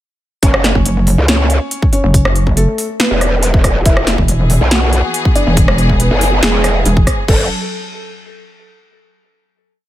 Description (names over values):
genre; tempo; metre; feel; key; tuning
heavy wobble dubstep; 140 BPM; 4/4; half-time; F# minor; A4 = 440 Hz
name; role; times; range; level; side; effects
felt-muted upright piano; melody; 0.4-7.4 s; G#3 to F#5; -21 LUFS; equal; ping-pong delay
growl bass; bass; 0.4-7.5 s; E1 to C#2; -14 LUFS; equal; chorus, overdrive
big-room dance drum kit; drums; 0.4-7.4 s; crash cymbal, hi-hat, rim click, snare drum; -17 LUFS; equal; none
electronic kick drum; drums; 0.4-7.4 s; none; -14 LUFS; equal; none
pulsing pluck wobble bass; bass; 0.8-7.1 s; E1 to F#1; -12 LUFS; equal; chorus, overdrive
rich studio string section; sustained chords; 3.9-7.5 s; E3 to A4; -21 LUFS; left 1 dB; sidechain pumping
room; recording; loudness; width
digital ambience; none; -10 LUFS; side -14 dB against mid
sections
0.4-7.3 drop; 7.3-9.0 final chord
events
drop 0.4-7.3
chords
0.4 F#5; 3.9 E; 7.3 F#m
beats
| 0.43 0.85 1.28 1.71 | 2.14 2.57 3.00 3.43 | 3.85 4.28 4.71 5.14 | 5.57 6.00 6.43 6.86 | 7.28